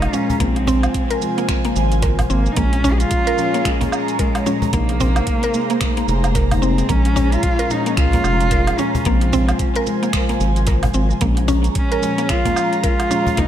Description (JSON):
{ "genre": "organic downtempo", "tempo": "111 BPM", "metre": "4/4", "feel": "swing 60% on 16ths", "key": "Bb minor", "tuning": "A4 = 440 Hz", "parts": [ { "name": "dark cello", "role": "melody", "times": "0.0-13.5 s", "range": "Ab3 to Ab4", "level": "-23 LUFS", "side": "equal", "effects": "tape echo" }, { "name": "muted felt-like synth keys", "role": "accompaniment", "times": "0.0-13.5 s", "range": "Bb2 to F4", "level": "-24 LUFS", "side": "left 4 dB", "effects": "chorus, sidechain pumping, analog delay" }, { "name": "airy breathy pad", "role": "sustained chords", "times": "0.0-13.5 s", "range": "F4 to Bb5", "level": "-27 LUFS", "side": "right 3 dB", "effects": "chorus, phaser, sidechain pumping" }, { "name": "round analog bass", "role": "bass", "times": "0.0-13.5 s", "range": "F1 to Db2", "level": "-18 LUFS", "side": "equal", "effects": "none" }, { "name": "afro-pop drum kit", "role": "drums", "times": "0.0-13.5 s", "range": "finger snaps, hi-hat, shaker, woodblock", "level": "-27 LUFS", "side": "right 3 dB", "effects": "studio reverb, analog delay" }, { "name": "cajon", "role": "percussion", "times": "0.0-13.4 s", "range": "none", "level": "-28 LUFS", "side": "left 2 dB", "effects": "analog delay" }, { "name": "mallet-like synth pluck", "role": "arpeggios", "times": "0.1-13.5 s", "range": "Bb3 to Bb4", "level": "-24 LUFS", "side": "right 1 dB", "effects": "chorus, tape echo" }, { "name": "electronic kick drum", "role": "drums", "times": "0.4-13.5 s", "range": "none", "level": "-21 LUFS", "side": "equal", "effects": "studio reverb" } ], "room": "light reverb", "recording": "echo-heavy mix", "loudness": "-15 LUFS", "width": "side -10 dB against mid", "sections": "0.0-13.5 A section", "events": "none", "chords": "0.4 Fm/Bb; 2.6 Bbm7; 4.7 Abadd9/Bb; 6.9 Bbm7; 9.1 Fm/Bb; 11.2 Bbm7" }